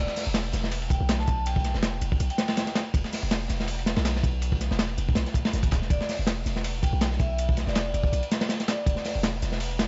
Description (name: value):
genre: drum and bass, jungle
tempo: 162 BPM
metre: 4/4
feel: swing 55% on 16ths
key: unclear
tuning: A4 = 440 Hz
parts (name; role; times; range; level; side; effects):
- vibraphone with medium hard mallets; melody; 0.0-2.8, 5.9-9.2 s; D5 to A5; -37 LUFS; equal; dub echo
- long sustained 808-style bass; bass; 0.0-9.9 s; D1 to B1; -31 LUFS; equal; none
- breakbeat sampler-style drum kit; drums; 0.1-9.9 s; hi-hat, snare drum, tambourine; -40 LUFS; equal; high-pass filter on perc, high-pass filter on hats, high-pass filter on snare
- crunchy breakbeat drum kit; drums; 0.1-9.9 s; hi-hat, kick drum, ride cymbal, snare drum; -29 LUFS; equal; none
room: small room ambience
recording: dry, gritty hardware recording, vinyl crackle, nothing above 7.8 kHz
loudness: -27 LUFS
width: mono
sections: 0.0-9.9 A section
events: none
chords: 0.0 G6/E (rootless); 5.9 E5